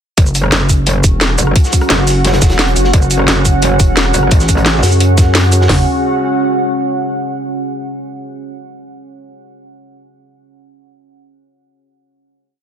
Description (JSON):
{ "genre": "dark technical drum and bass", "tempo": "174 BPM", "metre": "4/4", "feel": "straight", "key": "unclear", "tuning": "A4 = 436 Hz", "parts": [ { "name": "deep dark ambient pad", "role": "sustained chords", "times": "1.0-5.9 s", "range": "C#4 to F#5", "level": "-19 LUFS", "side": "right 1 dB", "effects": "chorus, built-in reverb, sidechain pumping" }, { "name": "metallic wobble bass", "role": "bass", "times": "0.2-5.9 s", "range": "F#1 to A1", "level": "-14 LUFS", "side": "equal", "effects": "distortion, chorus, overdrive" }, { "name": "crunchy breakbeat drum kit", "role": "drums", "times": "0.2-5.7 s", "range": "hi-hat, snare drum", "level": "-24 LUFS", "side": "equal", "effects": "none" }, { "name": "drum and bass drum kit", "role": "drums", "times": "0.2-5.8 s", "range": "hi-hat, kick drum, snare drum, toms", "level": "-11 LUFS", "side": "equal", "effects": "none" }, { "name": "drum and bass drum kit", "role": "drums", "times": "0.2-5.6 s", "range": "hi-hat, rim click, shaker, snare drum", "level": "-15 LUFS", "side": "equal", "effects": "none" }, { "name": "airy breathy pad", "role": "texture", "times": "0.4-7.0 s", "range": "C#4 to F#5", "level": "-20 LUFS", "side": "right 1 dB", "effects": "chorus, sidechain pumping" }, { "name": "vowel-sweep wobble bass", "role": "bass", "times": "1.0-5.7 s", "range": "E1 to F#2", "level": "-12 LUFS", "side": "equal", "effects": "chorus" } ], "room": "digital ambience", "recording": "dense, heavily limited modern master", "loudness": "-10 LUFS", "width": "side -9 dB against mid", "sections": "0.2-5.7 drop; 5.7-7.1 final chord", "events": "drop 0.2-5.7", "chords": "0.2 F#5", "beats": "| 0.18 0.52 0.87 1.21 | 1.56 1.90 2.25 2.59 | 2.94 3.28 3.62 3.97 | 4.31 4.66 5.00 5.35 | 5.69 6.04 6.38 6.73" }